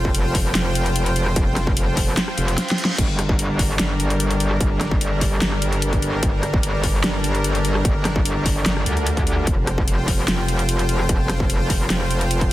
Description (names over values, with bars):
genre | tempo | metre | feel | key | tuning
heavy wobble dubstep | 148 BPM | 4/4 | half-time | G minor | A4 = 437 Hz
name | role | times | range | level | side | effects
supersaw pad | sustained chords | 0.0-12.5 s | G3 to G5 | -26 LUFS | equal | sidechain pumping
metallic wobble bass | bass | 0.0-12.5 s | F1 to D2 | -22 LUFS | equal | distortion, chorus, overdrive
electronic kick drum | drums | 0.0-12.5 s | none | -22 LUFS | equal | distortion
dubstep drum kit | drums | 0.1-12.5 s | crash cymbal, handclaps, hi-hat, rim click, snare drum | -24 LUFS | equal | none
reverse cymbal | sound effects | 2.4-3.0 s | none | -31 LUFS | right 2 dB | none
room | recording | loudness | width
light reverb, digital ambience | dense, heavily limited modern master | -18 LUFS | side -15 dB against mid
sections
0.0-12.5 A section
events
reverse cymbal 2.4-3.0; drum fill 2.6-3.0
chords
0.0 Fsus2; 3.0 Gm; 9.5 Fsus2